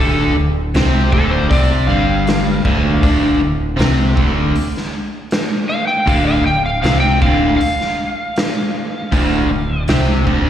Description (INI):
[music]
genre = blues rock power trio and southern rock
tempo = 79 BPM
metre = 4/4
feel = straight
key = D minor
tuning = A4 = 440 Hz
[part]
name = overdriven slide guitar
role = melody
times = 0.0-9.8 s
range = A4 to G5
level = -20 LUFS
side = equal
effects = slapback echo
[part]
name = crunchy overdriven guitar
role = riff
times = 0.0-10.5 s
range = D2 to C4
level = -16 LUFS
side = equal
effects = slapback echo
[part]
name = growling fingered electric bass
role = bass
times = 0.0-10.5 s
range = D1 to C2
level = -18 LUFS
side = equal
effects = overdrive
[part]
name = raw garage drum kit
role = drums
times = 0.7-10.4 s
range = hi-hat, kick drum, snare drum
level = -19 LUFS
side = equal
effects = none
[sound]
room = light reverb, studio ambience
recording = live gig heard through the venue's PA, recital hall reverb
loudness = -13 LUFS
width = side -10 dB against mid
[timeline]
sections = 0.0-10.5 A section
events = none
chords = 0.0 Dm